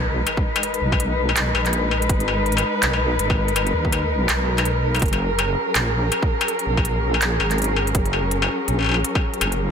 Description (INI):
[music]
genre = half-time drum and bass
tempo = 164 BPM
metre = 4/4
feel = swing 59% on 16ths, half-time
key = G# minor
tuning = A4 = 439 Hz
[part]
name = dark symphonic cello section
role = sustained chords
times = 0.0-9.7 s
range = F#3 to B4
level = -23 LUFS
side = left 1 dB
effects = sidechain pumping
[part]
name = deep soft wobble bass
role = bass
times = 0.0-9.7 s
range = F#1 to D#2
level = -23 LUFS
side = equal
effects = chorus, tube saturation
[part]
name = impact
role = sound effects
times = 0.0-0.6 s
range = none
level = -40 LUFS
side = equal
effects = none
[part]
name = industrial drum kit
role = drums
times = 0.3-9.6 s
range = handclaps, hi-hat, struck metal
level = -24 LUFS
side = left 2 dB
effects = none
[part]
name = electronic kick drum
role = drums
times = 0.4-9.2 s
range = none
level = -22 LUFS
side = equal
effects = none
[sound]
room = light reverb, digital ambience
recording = none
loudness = -18 LUFS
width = side -7 dB against mid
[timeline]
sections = 0.0-9.7 A section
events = impact 0.0-0.6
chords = 0.0 G#m; 5.0 F#